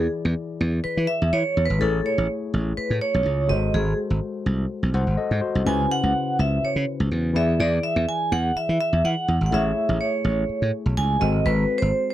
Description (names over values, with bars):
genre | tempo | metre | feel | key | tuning
disco | 124 BPM | 4/4 | straight | unclear | A4 = 440 Hz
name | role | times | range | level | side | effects
vibraphone with hard mallets | melody | 0.0-12.1 s | G#4 to G#5 | -24 LUFS | right 2 dB | none
barky tine electric piano | accompaniment | 0.0-12.1 s | C#3 to F#5 | -29 LUFS | left 5 dB | none
slap bass | bass | 0.0-11.9 s | G#1 to E3 | -22 LUFS | equal | none
room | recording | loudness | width
little or no reverb | dry, close 1970s-style studio recording | -20 LUFS | side -13 dB against mid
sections
0.0-12.1 A section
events
vibraphone solo 0.0-12.1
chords
0.0 E7; 1.8 Amaj7; 3.5 G#7b9; 5.7 C#m7; 7.3 E7; 9.5 Amaj7; 11.2 G#7b9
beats
0.35 0.83 1.32 | 1.80 2.28 2.77 3.25 | 3.73 4.21 4.69 5.18 | 5.66 6.14 6.62 7.11 | 7.59 8.07 8.55 9.04 | 9.52 10.00 10.48 10.97 | 11.45 11.93